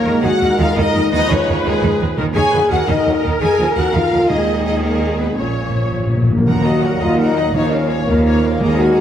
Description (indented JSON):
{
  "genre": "cinematic, heroic adventure film score",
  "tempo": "112 BPM (dotted quarters)",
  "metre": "6/8",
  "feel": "straight",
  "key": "Eb minor",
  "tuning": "A4 = 440 Hz",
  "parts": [
    { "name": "warm symphonic violin section", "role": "melody", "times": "0.0-9.0 s", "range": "Ab4 to Bb5", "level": "-28 LUFS", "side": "left 3 dB", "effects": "none" },
    { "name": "dark chamber violin section", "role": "second line", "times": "0.0-9.0 s", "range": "Ab4 to Bb5", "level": "-26 LUFS", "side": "left 2 dB", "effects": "none" },
    { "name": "mellow hollow large flute ensemble", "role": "second line", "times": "0.0-9.0 s", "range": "Ab4 to Ab5", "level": "-25 LUFS", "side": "left 1 dB", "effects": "none" },
    { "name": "warm symphonic viola section", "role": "accompaniment", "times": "0.0-9.0 s", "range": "Ab4 to Eb5", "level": "-24 LUFS", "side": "equal", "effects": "none" },
    { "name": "dark trombone section", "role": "sustained chords", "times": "0.0-9.0 s", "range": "Ab2 to Ab3", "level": "-24 LUFS", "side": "right 2 dB", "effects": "none" },
    { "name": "mellow French horn section", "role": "sustained chords", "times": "0.0-9.0 s", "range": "Ab3 to Ab4", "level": "-18 LUFS", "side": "left 2 dB", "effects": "none" },
    { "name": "dark symphonic double bass section", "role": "bass", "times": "0.0-9.0 s", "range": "Bb1 to Eb2", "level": "-21 LUFS", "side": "right 2 dB", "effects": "none" },
    { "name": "rich studio cello section", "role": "bass", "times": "0.1-9.0 s", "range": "Eb2 to Eb3", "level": "-22 LUFS", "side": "right 2 dB", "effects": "none" },
    { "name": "timpani", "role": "percussion", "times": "2.2-9.0 s", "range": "Bb2 to Eb3", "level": "-21 LUFS", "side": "left 1 dB", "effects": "none" }
  ],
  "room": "wet scoring stage reverb, RT60 1.9 s",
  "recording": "none",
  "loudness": "-13 LUFS",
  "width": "side -10 dB against mid",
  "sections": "0.0-6.5 A section; 6.5-9.0 B section",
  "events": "timpani fill 5.4-6.5",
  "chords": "0.1 Absus2/Eb; 1.1 Db/Eb; 2.2 Ebm; 3.2 Bb5/Eb; 4.3 Absus2/Eb; 5.4 Bbm; 6.5 Ebm; 7.5 Bbm/Eb"
}